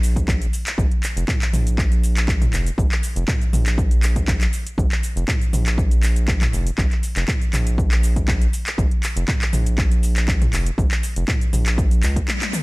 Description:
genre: afro house.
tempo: 120 BPM.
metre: 4/4.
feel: straight.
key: Bb minor.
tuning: A4 = 440 Hz.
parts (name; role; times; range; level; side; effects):
round analog bass; bass; 0.0-12.2 s; F1 to Db2; -20 LUFS; equal; sidechain pumping.
house drum kit; drums; 0.0-12.6 s; cabasa, handclaps, hi-hat, toms; -25 LUFS; equal; overdrive.
electronic kick drum; drums; 0.2-12.3 s; none; -20 LUFS; equal; overdrive.
room: little or no reverb.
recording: none.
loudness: -17 LUFS.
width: side -24 dB against mid.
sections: 0.0-12.6 A section.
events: break 12.3-12.6; drum fill 12.3-12.6; band accent 12.3.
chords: none.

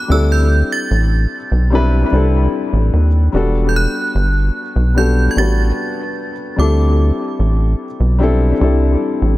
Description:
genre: contemporary R&B.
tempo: 74 BPM.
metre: 4/4.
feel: straight.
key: unclear.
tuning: A4 = 436 Hz.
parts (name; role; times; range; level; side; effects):
synth chime; melody; 0.0-7.4 s; D6 to A6; -23 LUFS; right 3 dB; ensemble chorus, dub echo.
warm grand piano; accompaniment; 0.0-9.4 s; G3 to B4; -19 LUFS; left 3 dB; dub echo.
rubbery square bass; bass; 0.1-9.4 s; E1 to D#2; -13 LUFS; equal; none.
room: small room reverb.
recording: echo-heavy mix.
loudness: -13 LUFS.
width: side -17 dB against mid.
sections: 0.0-9.4 A section.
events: none.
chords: 0.1 D9sus4; 3.3 Em11; 6.6 D9sus4.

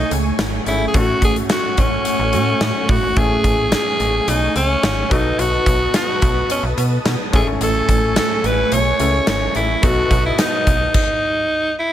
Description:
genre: 1980s-style pop.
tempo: 108 BPM.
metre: 4/4.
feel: straight.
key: unclear.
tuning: A4 = 440 Hz.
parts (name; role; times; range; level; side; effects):
raspy alto saxophone; melody; 0.0-11.9 s; C#4 to C#5; -19 LUFS; equal; none.
bright grand piano; accompaniment; 0.0-11.0 s; A2 to G#5; -25 LUFS; left 4 dB; none.
string machine, cellos; sustained chords; 0.0-10.9 s; A3 to D#6; -24 LUFS; right 2 dB; ensemble chorus.
slap-like FM bass; bass; 0.0-10.9 s; G#1 to B2; -21 LUFS; equal; none.
huge arena drum kit; drums; 0.1-11.1 s; crash cymbal, hi-hat, kick drum, snare drum; -20 LUFS; equal; none.
room: light reverb, small room ambience.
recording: none.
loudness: -15 LUFS.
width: side -11 dB against mid.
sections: 0.0-11.9 A section.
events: stop 10.9-11.9.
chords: 0.0 Amaj7; 0.9 F#m/A; 3.2 Amaj7; 5.1 B7; 7.3 Amaj7; 9.8 B7.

